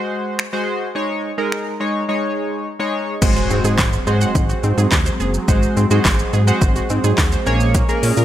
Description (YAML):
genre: dance-pop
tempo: 106 BPM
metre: 4/4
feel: straight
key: unclear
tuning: A4 = 438 Hz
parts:
  - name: chorused retro synth keys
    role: accompaniment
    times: 0.0-8.2 s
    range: Ab3 to Db5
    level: -21 LUFS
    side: equal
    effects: sidechain pumping
  - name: deep house drum kit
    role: drums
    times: 0.4-8.2 s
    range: crash cymbal, finger snaps, handclaps, hi-hat, kick drum, shaker, snare drum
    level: -19 LUFS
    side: equal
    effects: overdrive
  - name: filtered supersaw swell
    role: sustained chords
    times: 3.2-8.2 s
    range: Gb3 to Db4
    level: -26 LUFS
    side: right 2 dB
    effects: sidechain pumping
  - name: glassy wavetable pluck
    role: arpeggios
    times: 3.2-8.2 s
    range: Ab3 to Gb5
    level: -26 LUFS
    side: right 1 dB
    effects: chorus, sidechain pumping, tape echo
  - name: chorused synth bass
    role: bass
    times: 3.2-8.2 s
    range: Gb1 to Bb2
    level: -18 LUFS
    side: equal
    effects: sidechain pumping
  - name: impact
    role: sound effects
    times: 3.2-5.5 s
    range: none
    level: -28 LUFS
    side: equal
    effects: none
room: light reverb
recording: none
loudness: -15 LUFS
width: side -12 dB against mid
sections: 0.0-3.2 A section; 3.2-8.2 B section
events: drums muted 2.7-3.2; impact 3.2-5.5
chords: 0.0 Ab7; 1.0 Eb7sus4; 3.2 Ab7; 7.5 Bbm7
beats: 0.39 | 0.95 1.52 2.09 2.65 | 3.22 3.79 4.35 4.92 | 5.48 6.05 6.62 7.18 | 7.75